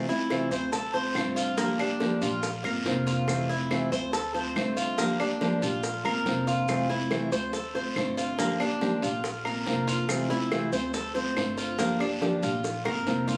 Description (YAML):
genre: latin, Cuban son and guajira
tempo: 141 BPM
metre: 4/4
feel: straight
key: F major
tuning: A4 = 439 Hz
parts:
  - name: nylon-string guitar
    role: accompaniment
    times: 0.0-13.4 s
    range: C3 to G4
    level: -32 LUFS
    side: equal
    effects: none
  - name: Cuban tres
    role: arpeggios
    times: 0.1-13.4 s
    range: Bb3 to C5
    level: -33 LUFS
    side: equal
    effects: none
  - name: bongos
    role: percussion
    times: 0.1-13.4 s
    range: none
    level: -38 LUFS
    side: equal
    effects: none
  - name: maracas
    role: percussion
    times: 0.1-13.4 s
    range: none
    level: -43 LUFS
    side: equal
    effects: none
  - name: claves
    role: percussion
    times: 0.3-13.1 s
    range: none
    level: -38 LUFS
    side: equal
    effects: none
  - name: guiro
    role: percussion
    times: 0.3-13.4 s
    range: none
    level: -42 LUFS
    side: equal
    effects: none
  - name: upright bass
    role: bass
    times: 0.5-13.4 s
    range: F1 to D2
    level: -39 LUFS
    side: equal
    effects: none
room: light reverb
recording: recorded on a phone in the room, studio ambience, compression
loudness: -28 LUFS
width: mono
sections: 0.0-13.4 A section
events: drum fill 12.6-13.4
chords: 0.0 Fmaj7; 0.7 Dm7; 1.6 Gm7; 2.4 Bbadd9; 3.3 Fmaj7; 4.1 Dm7; 5.0 Gm7; 5.8 Bbadd9; 6.7 Fmaj7; 7.5 Dm7; 8.4 Gm7; 9.2 Bbadd9; 10.1 Fmaj7; 10.9 Dm7; 11.8 Gm7; 12.6 Bbadd9